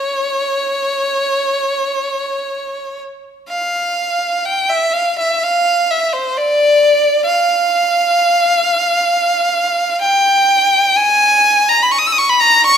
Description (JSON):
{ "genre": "classical, free, expressive piece for unaccompanied violin", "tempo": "60-69 BPM", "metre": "4/4", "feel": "rubato", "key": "unclear", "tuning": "A4 = 440 Hz", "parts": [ { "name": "clear violin", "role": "solo", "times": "0.0-12.8 s", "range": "B#4 to E6", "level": "-12 LUFS", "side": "equal", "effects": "none" } ], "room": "moderate scoring stage reverb, RT60 1.6 s", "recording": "recorded in a church or concert hall", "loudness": "-12 LUFS", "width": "side -8 dB against mid", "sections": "0.0-12.8 A section", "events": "none", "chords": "none" }